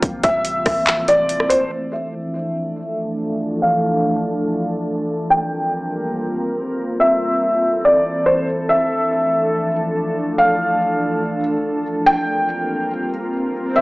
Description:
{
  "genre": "hip hop, atmospheric cloud-rap",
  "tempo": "142 BPM",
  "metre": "4/4",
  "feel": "half-time",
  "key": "D minor",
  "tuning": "A4 = 442 Hz",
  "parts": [
    { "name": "glassy FM pad", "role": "sustained chords", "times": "0.0-13.8 s", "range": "E3 to Bb4", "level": "-22 LUFS", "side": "equal", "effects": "ensemble chorus, built-in reverb, sidechain pumping, low-pass filter" },
    { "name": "clean 808-style bass", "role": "bass", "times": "0.0-1.7 s", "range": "A1", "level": "-37 LUFS", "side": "equal", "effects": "none" },
    { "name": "trap drum kit", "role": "drums", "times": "0.0-1.6 s", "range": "handclaps, hi-hat, kick drum, rim click", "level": "-20 LUFS", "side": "equal", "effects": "none" },
    { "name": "felt-muted upright piano", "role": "melody", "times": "0.2-13.8 s", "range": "C5 to G5", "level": "-18 LUFS", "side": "equal", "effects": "low-pass filter, digital delay" },
    { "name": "swell", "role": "sound effects", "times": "13.6-13.8 s", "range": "none", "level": "-23 LUFS", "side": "equal", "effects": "none" }
  ],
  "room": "wet digital room reverb, RT60 0.9 s",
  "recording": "small speaker sound",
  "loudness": "-17 LUFS",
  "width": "side -22 dB against mid",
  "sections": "0.0-1.7 A section; 1.7-13.8 B section",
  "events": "filter sweep 1.7-13.8; swell 13.6",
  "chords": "0.0 Am; 1.7 Dmadd9; 5.1 C7sus4; 6.8 Am; 8.5 Dmadd9; 11.9 C7sus4"
}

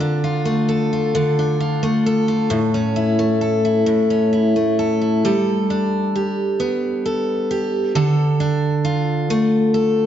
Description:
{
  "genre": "pop",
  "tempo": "44 BPM (dotted quarters)",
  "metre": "6/8",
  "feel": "straight",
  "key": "D minor",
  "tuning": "A4 = 443 Hz",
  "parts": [
    { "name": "picked steel-string acoustic guitar", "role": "solo", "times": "0.0-10.1 s", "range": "A2 to A4", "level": "-16 LUFS", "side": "equal", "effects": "none" }
  ],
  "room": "wet concert hall reverb, RT60 1.9 s",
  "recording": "nothing above 7.7 kHz",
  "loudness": "-16 LUFS",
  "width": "side -10 dB against mid",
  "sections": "0.0-5.2 A section; 5.2-10.1 B section",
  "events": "none",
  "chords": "0.0 Dm; 2.5 A; 5.2 Gadd9; 7.9 Dm"
}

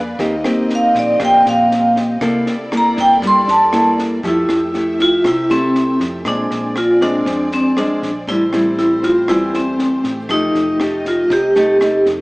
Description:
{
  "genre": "bossa nova",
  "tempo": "119 BPM",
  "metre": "4/4",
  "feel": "straight",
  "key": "F major",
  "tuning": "A4 = 442 Hz",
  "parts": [
    { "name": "nylon-string guitar", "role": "accompaniment", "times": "0.0-12.2 s", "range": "A2 to A4", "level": "-19 LUFS", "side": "equal", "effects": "none" },
    { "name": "warm studio string section", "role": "sustained chords", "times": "0.0-12.2 s", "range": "A3 to E5", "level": "-28 LUFS", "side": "equal", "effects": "none" },
    { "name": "hollow-body short-scale fingered electric bass", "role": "bass", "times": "0.0-12.2 s", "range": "F1 to G2", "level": "-32 LUFS", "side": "equal", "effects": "none" },
    { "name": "compact cocktail drum kit", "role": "drums", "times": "0.2-12.1 s", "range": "kick drum, rim click, snare drum", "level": "-28 LUFS", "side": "equal", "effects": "none" },
    { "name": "vibraphone with medium hard mallets", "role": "melody", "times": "0.8-12.0 s", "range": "C4 to C6", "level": "-14 LUFS", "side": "equal", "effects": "none" }
  ],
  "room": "moderate plate reverb, RT60 2.0 s",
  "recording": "heard from further back in the room, small speaker sound",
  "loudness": "-13 LUFS",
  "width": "side -23 dB against mid",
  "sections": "0.0-4.2 A section; 4.2-12.2 B section",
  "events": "vibraphone solo 0.0-4.2",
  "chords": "0.2 Eb6; 2.2 C13; 4.2 Fmaj9; 6.3 Bb9; 8.3 Am7; 10.3 F9"
}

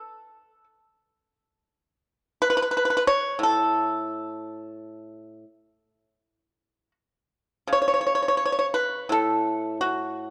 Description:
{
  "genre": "chinese traditional, Chinese solo plucked strings",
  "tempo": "77-90 BPM",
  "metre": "4/4",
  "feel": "rubato",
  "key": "A gong mode",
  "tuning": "A4 = 439 Hz",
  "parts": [
    { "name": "pipa", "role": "solo", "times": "0.0-10.3 s", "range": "A2 to C#5", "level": "-25 LUFS", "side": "equal", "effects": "none" }
  ],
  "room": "moderate scoring stage reverb, RT60 2.0 s",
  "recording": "dark, warm production",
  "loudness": "-24 LUFS",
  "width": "mono",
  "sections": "0.0-7.7 A section; 7.7-10.3 B section",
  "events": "none",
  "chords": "none"
}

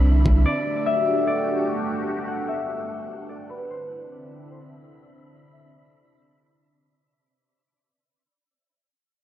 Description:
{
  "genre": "hip hop",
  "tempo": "148 BPM",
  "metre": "4/4",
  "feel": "half-time",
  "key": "unclear",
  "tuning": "A4 = 440 Hz",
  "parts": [
    { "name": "concert harp", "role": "melody", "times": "0.0-7.6 s", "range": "B4 to F#5", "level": "-27 LUFS", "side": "left 3 dB", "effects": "low-pass filter, tape echo" },
    { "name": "sweeping resonant pad", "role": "sustained chords", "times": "0.0-6.9 s", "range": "D3 to G4", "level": "-28 LUFS", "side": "right 1 dB", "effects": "chorus, sidechain pumping, low-pass filter" },
    { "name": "long sustained 808-style bass", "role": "bass", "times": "0.0-0.5 s", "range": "C2", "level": "-16 LUFS", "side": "equal", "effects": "none" },
    { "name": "wind-like tuned noise texture", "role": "texture", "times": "0.0-6.9 s", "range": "G2 to B5", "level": "-39 LUFS", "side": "left 1 dB", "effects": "built-in reverb" }
  ],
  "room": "digital ambience",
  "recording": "dry, gritty hardware recording, lossy compression artefacts",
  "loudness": "-21 LUFS",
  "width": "side -12 dB against mid",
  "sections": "0.0-6.9 A section",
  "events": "fade-out 0.0-6.9; filter sweep 0.0-6.9",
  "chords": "0.5 Gmaj9; 3.7 Cmaj9"
}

